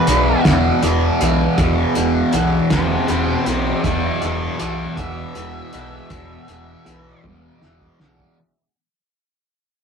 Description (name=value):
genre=psychedelic rock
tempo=53 BPM (dotted quarters)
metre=6/8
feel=straight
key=E minor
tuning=A4 = 440 Hz
part: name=octave-fuzz lead guitar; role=melody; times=0.0-7.2 s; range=G4 to E5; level=-24 LUFS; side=equal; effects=distortion
part: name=fuzz guitar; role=riff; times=0.0-8.4 s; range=E2 to E3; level=-18 LUFS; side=equal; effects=distortion, phaser
part: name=growling picked electric bass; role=bass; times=0.1-8.2 s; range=E1 to B1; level=-23 LUFS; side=equal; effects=overdrive
part: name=cloth-damped thuddy drum kit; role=drums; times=0.1-8.4 s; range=hi-hat, kick drum, snare drum, toms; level=-21 LUFS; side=equal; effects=none
room=moderate stone room reverb, RT60 1.1 s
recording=rough rehearsal-room recording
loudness=-15 LUFS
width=side -6 dB against mid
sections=0.0-8.4 A section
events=fade-out 0.0-8.4; lead electric guitar solo 0.0-8.4; drum fill 7.2-8.4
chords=0.0 E5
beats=0.45 | 1.58 2.71 | 3.84 4.97 | 6.10 7.24